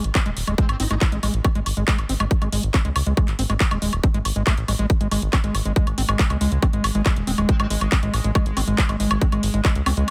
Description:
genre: psychedelic trance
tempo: 139 BPM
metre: 4/4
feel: straight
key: Ab major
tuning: A4 = 440 Hz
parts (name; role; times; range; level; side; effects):
- overdriven acid bass; riff; 0.0-10.1 s; Ab3 to C4; -29 LUFS; equal; distortion, sidechain pumping, digital delay
- round analog bass; bass; 0.0-10.0 s; Eb1 to Db2; -26 LUFS; equal; none
- drum and bass drum kit; drums; 0.0-10.1 s; handclaps, hi-hat, woodblock; -28 LUFS; equal; overdrive
- electronic kick drum; drums; 0.1-9.7 s; none; -22 LUFS; equal; overdrive
- metallic wobble bass; second line; 0.6-1.0, 7.5-7.7 s; C4 to Eb4; -39 LUFS; equal; none
- pulsing gated texture; sustained chords; 5.6-10.1 s; Ab3; -32 LUFS; equal; none
room: digital ambience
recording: none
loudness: -21 LUFS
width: mono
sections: 0.0-10.1 A section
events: none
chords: 0.0 Ab5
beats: 0.15 0.58 1.01 | 1.45 1.88 2.31 2.74 | 3.17 3.60 4.04 4.47 | 4.90 5.33 5.76 6.19 | 6.62 7.06 7.49 7.92 | 8.35 8.78 9.21 9.65 | 10.08

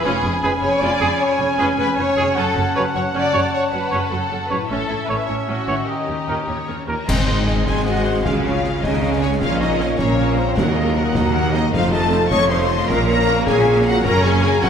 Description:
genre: cinematic, heroic adventure film score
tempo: 103 BPM (dotted quarters)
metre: 12/8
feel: straight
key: Ab mixolydian from 7.1 s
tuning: A4 = 440 Hz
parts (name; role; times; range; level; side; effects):
- rich studio violin section; second line; 0.0-14.7 s; F#4 to Db6; -24 LUFS; left 2 dB; none
- silver concert flute; second line; 0.0-6.8 s; A5 to B5; -29 LUFS; left 2 dB; none
- warm symphonic viola section; accompaniment; 0.0-14.7 s; Gb3 to B4; -27 LUFS; right 2 dB; none
- concert harp; arpeggios; 0.0-14.7 s; E#2 to Eb6; -28 LUFS; left 8 dB; none
- rich symphonic double bass section; bass; 0.0-14.7 s; E#1 to D#2; -25 LUFS; right 3 dB; none
- warm symphonic violin section; melody; 0.1-14.7 s; A#4 to Db6; -26 LUFS; left 3 dB; none
- mellow cor anglais; second line; 0.1-6.9 s; D#5 to G#5; -27 LUFS; right 2 dB; none
- warm clarinet; second line; 0.1-6.8 s; C#4; -28 LUFS; right 1 dB; none
- clear symphonic cello section; bass; 0.1-14.7 s; D#2 to Db3; -26 LUFS; right 3 dB; none
- mellow French horn section; sustained chords; 0.4-14.7 s; A3 to Db5; -23 LUFS; left 3 dB; none
- warm trombone section; sustained chords; 0.4-14.7 s; A2 to Eb4; -30 LUFS; right 5 dB; none
- warm trumpet; stabs; 0.4-6.9 s; G#4 to C#5; -26 LUFS; right 1 dB; none
- cymbal swell, clash cymbals and concert bass drum; percussion; 4.7-7.8 s; none; -26 LUFS; equal; none
- concert snare drum, clash cymbals and concert bass drum; drums; 7.1-14.7 s; none; -27 LUFS; equal; none
- timpani; percussion; 10.6-11.1 s; Eb3; -26 LUFS; right 2 dB; none
room: wet scoring stage reverb, RT60 1.7 s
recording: none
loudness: -16 LUFS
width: side -7 dB against mid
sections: 0.0-7.1 A section; 7.1-14.7 B section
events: band accent 7.1-7.5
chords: 0.1 C#7/E#; 2.4 F#m; 4.7 A; 5.9 D#7; 7.1 Ab; 8.3 Db; 9.4 Bbm; 10.6 Ebm; 11.7 F7; 12.9 Bbm; 14.0 Gb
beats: | 0.05 0.63 1.21 1.79 | 2.37 2.95 3.53 4.11 | 4.70 5.28 5.88 6.48 | 7.08 7.67 8.25 8.83 | 9.42 10.00 10.58 11.16 | 11.74 12.31 12.89 13.47 | 14.05 14.62

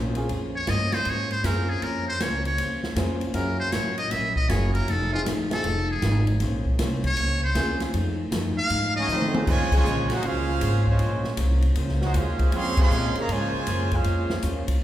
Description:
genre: jazz, big band swing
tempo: 157 BPM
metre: 4/4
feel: swing 65% on 8ths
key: Bb minor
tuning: A4 = 439 Hz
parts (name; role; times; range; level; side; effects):
- vintage hollow-body jazz guitar; accompaniment; 0.0-14.7 s; F3 to C5; -32 LUFS; left 1 dB; none
- upright bass; bass; 0.0-14.8 s; F1 to Bb2; -26 LUFS; equal; none
- swinging big-band drum kit; drums; 0.1-14.7 s; crash cymbal, hi-hat, kick drum, ride cymbal, snare drum, toms; -28 LUFS; equal; none
- clear upright piano; accompaniment; 0.2-9.5 s; A3 to Ab4; -33 LUFS; equal; none
- trumpet with metal mute; melody; 0.6-9.3 s; F4 to F5; -27 LUFS; equal; none
- brilliant trumpet section; melody; 9.0-14.4 s; Ab3 to C6; -29 LUFS; right 2 dB; none
- brilliant trombone section; second line; 9.0-14.4 s; C3 to Gb4; -30 LUFS; right 1 dB; none
room: wet recital hall reverb, RT60 1.8 s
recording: recorded in a church or concert hall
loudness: -22 LUFS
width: side -13 dB against mid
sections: 0.0-9.5 A section; 9.5-14.8 B section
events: muted trumpet solo 0.0-9.5; drum fill 9.1-9.5; band accent 9.7, 12.7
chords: 0.0 Bbm9; 3.4 Gb7; 4.9 F7#9; 6.4 Bbm9; 7.9 F7#9; 9.5 Bbm9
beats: | 0.29 0.67 1.05 1.44 | 1.82 2.20 2.59 2.97 | 3.35 3.73 4.12 4.50 | 4.88 5.26 5.64 6.03 | 6.41 6.79 7.17 7.56 | 7.94 8.32 8.70 9.08 | 9.46 9.85 10.23 10.61 | 10.99 11.37 11.76 12.14 | 12.52 12.90 13.28 13.66 | 14.04 14.43 14.81

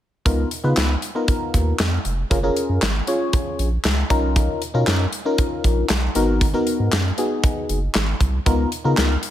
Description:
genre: early-eighties boogie funk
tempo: 117 BPM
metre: 4/4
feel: straight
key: unclear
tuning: A4 = 440 Hz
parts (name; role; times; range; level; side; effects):
- FM electric piano; accompaniment; 0.3-9.2 s; B3 to C#5; -22 LUFS; left 2 dB; chorus, phaser
- saturated sub bass; bass; 0.3-9.2 s; E#1 to C#3; -21 LUFS; equal; none
- modern studio drum kit; drums; 0.3-9.3 s; handclaps, hi-hat, kick drum, snare drum; -22 LUFS; equal; none
room: little or no reverb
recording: none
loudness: -18 LUFS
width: side -12 dB against mid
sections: 0.3-9.3 A section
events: none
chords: 0.3 C#13; 2.3 F#maj9; 4.1 Bmaj9#11; 6.2 G#m9; 8.5 C#13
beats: | 0.26 0.77 1.28 1.80 | 2.31 2.82 3.33 3.85 | 4.36 4.87 5.39 5.90 | 6.41 6.92 7.44 7.95 | 8.46 8.97

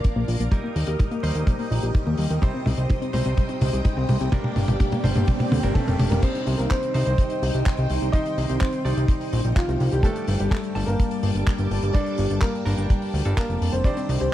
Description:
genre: italo disco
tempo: 126 BPM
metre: 4/4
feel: straight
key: G minor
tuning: A4 = 440 Hz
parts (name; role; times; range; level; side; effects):
- string machine, full ensemble; sustained chords; 0.0-14.3 s; G3 to Eb6; -30 LUFS; left 1 dB; phaser, ensemble chorus
- analog pluck; arpeggios; 0.0-6.2, 13.9-14.3 s; F3 to Bb4; -31 LUFS; left 3 dB; chorus, cassette tape, ping-pong delay
- direct-recorded clean electric guitar; stabs; 0.0-14.3 s; G2 to A5; -33 LUFS; right 2 dB; low-pass filter
- damped 70s drum kit; drums; 0.0-14.3 s; crash cymbal, handclaps, hi-hat, toms; -29 LUFS; equal; studio reverb
- kick drum; drums; 0.0-13.9 s; none; -21 LUFS; equal; studio reverb
- riser and swell; sound effects; 3.0-6.2 s; none; -34 LUFS; right 2 dB; none
- fat analog bass; bass; 0.2-14.3 s; F1 to Eb2; -23 LUFS; equal; none
- warm baby grand piano; melody; 5.7-14.3 s; F3 to Eb5; -29 LUFS; equal; ping-pong delay
room: light reverb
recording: dark, warm production, vinyl crackle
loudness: -20 LUFS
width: side -13 dB against mid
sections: 0.0-6.2 A section; 6.2-14.3 B section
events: drum fill 0.0-6.2; filter sweep on synth arpeggio sound 0.0-6.2; swell 5.3-6.2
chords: 0.0 Bb; 0.5 Eb; 2.4 Cm; 4.3 Gm; 6.2 Cm; 10.0 Gmadd9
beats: 0.04 | 0.52 0.99 1.47 1.95 | 2.42 2.90 3.38 3.85 | 4.33 4.80 5.28 5.76 | 6.23 6.71 7.18 7.66 | 8.14 8.61 9.09 9.57 | 10.04 10.52 10.99 11.47 | 11.95 12.42 12.90 13.38 | 13.85 14.33

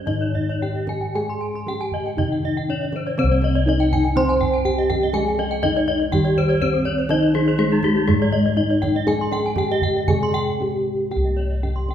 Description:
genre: Balinese gamelan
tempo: 120 BPM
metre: 4/4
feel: straight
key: C pelog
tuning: A4 = 440 Hz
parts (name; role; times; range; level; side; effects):
- gamelan-type bronze metallophone; melody; 0.0-11.9 s; Ab3 to C5; -22 LUFS; equal; none
- gamelan-type bronze metallophone; accompaniment; 0.0-11.1 s; C3 to C4; -28 LUFS; equal; none
- gamelan-type bronze metallophone; arpeggios; 0.0-11.9 s; Eb4 to C6; -29 LUFS; right 4 dB; none
- gamelan-type bossed gongs; bass; 0.0-11.9 s; C2 to Ab4; -25 LUFS; equal; none
- gamelan-type bronze metallophone; arpeggios; 0.1-11.9 s; G4 to C6; -25 LUFS; left 4 dB; none
- kendang; percussion; 0.1-11.9 s; none; -28 LUFS; right 3 dB; none
room: wet recital hall reverb, RT60 1.4 s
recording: recorded in a church or concert hall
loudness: -18 LUFS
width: side -9 dB against mid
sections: 0.0-3.2 A section; 3.2-11.1 B section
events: break 10.3-11.1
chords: none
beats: 0.07 0.62 | 1.15 1.68 2.19 2.69 | 3.19 3.67 4.16 4.65 | 5.14 5.63 6.12 6.61 | 7.10 7.59 8.08 8.58 | 9.08 9.58 10.09 10.60 | 11.11 11.63

